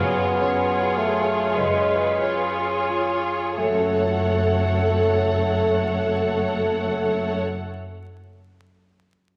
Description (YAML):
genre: classical, slow romantic movement for symphony orchestra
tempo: 28-39 BPM (dotted quarters)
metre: 6/8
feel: rubato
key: F# minor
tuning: A4 = 440 Hz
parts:
  - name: warm studio violin section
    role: melody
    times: 0.0-7.4 s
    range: G#4 to F#5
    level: -35 LUFS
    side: equal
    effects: none
  - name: rich studio violin section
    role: second line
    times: 0.0-7.4 s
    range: C#5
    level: -32 LUFS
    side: equal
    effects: none
  - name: warm bassoon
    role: accompaniment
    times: 0.0-7.4 s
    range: G#3 to B3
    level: -26 LUFS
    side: equal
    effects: none
  - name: warm studio viola section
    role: accompaniment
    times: 0.0-7.4 s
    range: E#4 to A4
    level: -28 LUFS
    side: equal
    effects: none
  - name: concert harp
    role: arpeggios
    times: 0.0-7.7 s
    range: F#2 to F#5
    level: -34 LUFS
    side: equal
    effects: none
  - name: rich studio cello section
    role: bass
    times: 0.0-7.4 s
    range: F#2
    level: -31 LUFS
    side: equal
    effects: none
  - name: rich studio double bass section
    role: bass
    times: 0.0-7.4 s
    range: F#1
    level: -33 LUFS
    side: equal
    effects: none
room: wet scoring stage reverb, RT60 1.6 s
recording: vinyl crackle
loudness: -22 LUFS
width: mono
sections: 0.0-3.6 A section; 3.6-7.4 B section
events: slowing down 0.0-3.6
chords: 0.0 C#7/F#; 3.6 F#m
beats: 1.57 | 3.58 5.52